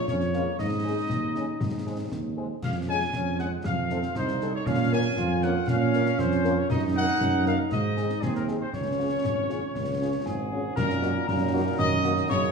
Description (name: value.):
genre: military-style march for wind band.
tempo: 118 BPM.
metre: 2/4.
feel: straight.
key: Db major.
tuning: A4 = 442 Hz.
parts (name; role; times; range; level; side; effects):
bright trumpet section; melody; 0.0-12.5 s; Ab4 to Ab5; -30 LUFS; left 2 dB; none.
clear trombone section; sustained chords; 0.1-12.5 s; Gb3 to F4; -31 LUFS; right 2 dB; none.
mellow tuba; bass; 0.1-12.5 s; Ab1 to Bb2; -28 LUFS; right 3 dB; none.
concert snare drum, concert bass drum and clash cymbals; drums; 0.1-12.5 s; none; -33 LUFS; left 2 dB; none.
mellow French horn section; accompaniment; 0.3-12.1 s; Ab3 to Bb4; -35 LUFS; left 4 dB; none.
glockenspiel with soft plastic mallets; second line; 10.3-12.5 s; Ab5 to Eb6; -32 LUFS; left 4 dB; none.
mellow euphonium; second line; 10.3-12.5 s; Ab2 to Eb3; -31 LUFS; right 4 dB; none.
room: wet large studio reverb, RT60 1.4 s.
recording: studio ambience.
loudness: -24 LUFS.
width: side -5 dB against mid.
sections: 0.0-10.8 A section; 10.8-12.5 B section.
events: none.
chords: 0.0 Bbm7; 0.6 Absus4; 1.6 Ab; 2.6 Db/F; 3.6 F7; 4.7 Bbm; 6.7 Ebm/Gb; 7.7 Ab; 8.7 Db; 10.8 Ebm/Gb.